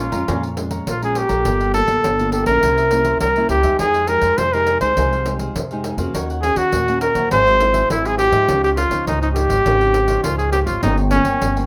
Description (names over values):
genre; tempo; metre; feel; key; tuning
samba and choro; 102 BPM; 4/4; straight; F minor; A4 = 440 Hz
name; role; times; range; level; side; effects
warm trumpet; melody; 0.0-11.7 s; Db4 to C5; -19 LUFS; equal; plate reverb
cavaquinho; accompaniment; 0.0-11.7 s; Eb4 to Bb5; -34 LUFS; equal; none
nylon-string guitar; accompaniment; 0.0-11.7 s; F2 to A4; -28 LUFS; equal; plate reverb
upright bass; bass; 0.0-11.7 s; G1 to Ab2; -25 LUFS; equal; none
pandeiro; percussion; 0.1-11.7 s; none; -30 LUFS; equal; none
room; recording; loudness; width
wet studio reverb, RT60 0.5 s; rough home demo mix; -17 LUFS; mono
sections
0.0-11.7 A section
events
none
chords
0.0 Bbm7; 1.5 Gm9; 2.6 C7b9; 3.8 Fm9; 6.1 Ebm7; 7.3 Ab7b13; 8.5 Dbmaj9; 10.8 Gm7b5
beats
0.29 0.87 | 1.46 2.04 2.63 3.21 | 3.80 4.39 4.97 5.56 | 6.14 6.73 7.32 7.90 | 8.49 9.07 9.66 10.24 | 10.83 11.41